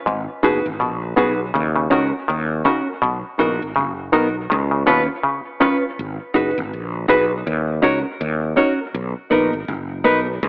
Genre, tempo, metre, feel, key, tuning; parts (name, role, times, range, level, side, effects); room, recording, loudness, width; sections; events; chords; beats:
reggae; 81 BPM; 4/4; swing 58% on 16ths; G# dorian; A4 = 439 Hz
muted clav; arpeggios; 0.1-5.8 s; G#2 to D#3; -21 LUFS; left 1 dB; overdrive
fretless electric bass; bass; 0.1-10.5 s; F#1 to D#2; -24 LUFS; equal
mellow electric guitar; accompaniment; 0.4-10.3 s; B3 to B4; -22 LUFS; right 1 dB; dub echo
barky reed electric piano; stabs; 0.4-10.3 s; B3 to C#5; -19 LUFS; left 1 dB; overdrive, fast tremolo
moderate spring reverb, RT60 2.3 s; AM radio sound; -17 LUFS; side -23 dB against mid
0.0-6.0 A section; 6.0-10.5 A section
0.1 G#m7; 1.5 D#m7; 3.0 Bmaj7; 4.5 C#7; 6.0 G#m7; 7.5 D#m7; 8.9 Bmaj7
| 0.06 0.80 1.54 2.28 | 3.02 3.76 4.50 5.24 | 5.98 6.72 7.46 8.20 | 8.94 9.68 10.42